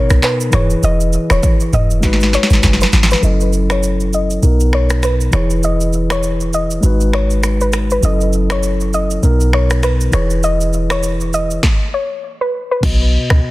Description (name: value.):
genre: afrobeats.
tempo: 100 BPM.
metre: 4/4.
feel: swing 58% on 16ths.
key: B major.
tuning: A4 = 440 Hz.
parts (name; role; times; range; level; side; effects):
soft round pluck; melody; 0.0-12.8 s; B4 to D#5; -20 LUFS; left 1 dB; chorus, low-pass filter, digital delay.
mellow tine electric piano; accompaniment; 0.0-13.5 s; B2 to D#5; -19 LUFS; left 1 dB; low-pass filter.
clean 808-style bass; bass; 0.1-13.4 s; D#1 to C#2; -15 LUFS; equal; none.
afro-pop drum kit; drums; 0.1-13.4 s; crash cymbal, finger snaps, handclaps, kick drum, rim click, shaker, snare drum, toms; -18 LUFS; equal; soft clipping on snare.
room: light reverb, digital ambience.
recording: dense, heavily limited modern master.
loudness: -12 LUFS.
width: side -18 dB against mid.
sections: 0.0-3.2 A section; 3.2-12.8 B section.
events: drum fill 2.0-3.2; filter sweep 3.2-12.8; hi-hats muted 12.8-13.5.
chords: 0.0 Bmaj7; 0.5 E; 2.0 G#m7; 3.2 F#m7; 4.4 Bmaj7; 5.3 E; 6.8 G#m7; 8.0 F#m7; 9.2 Bmaj7; 10.1 E; 11.6 N.C.; 12.8 B.